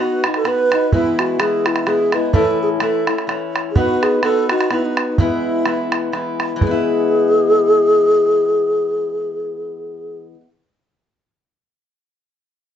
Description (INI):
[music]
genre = celtic folk, Celtic waltz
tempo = 127 BPM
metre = 3/4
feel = swing 55% on 8ths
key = E major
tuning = A4 = 441 Hz
[part]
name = mellow wooden-headed alto flute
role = melody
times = 0.0-10.2 s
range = D#4 to B4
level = -17 LUFS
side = equal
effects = slapback echo
[part]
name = fingerpicked steel-string acoustic guitar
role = accompaniment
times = 0.0-10.5 s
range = A2 to B4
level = -20 LUFS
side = left 3 dB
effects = none
[part]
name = bodhran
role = percussion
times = 0.2-6.9 s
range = none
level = -19 LUFS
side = right 3 dB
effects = none
[sound]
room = light reverb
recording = nothing above 7.9 kHz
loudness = -14 LUFS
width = side -9 dB against mid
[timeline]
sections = 0.0-6.6 A section; 6.6-9.4 B section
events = none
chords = 0.0 B; 0.9 E; 2.3 A; 3.8 B; 5.2 E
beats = 0.44 | 0.92 1.39 1.87 | 2.34 2.82 3.29 | 3.76 4.24 4.71 | 5.18 5.66 6.13 | 6.61 7.08 7.55 | 8.03 8.50 8.97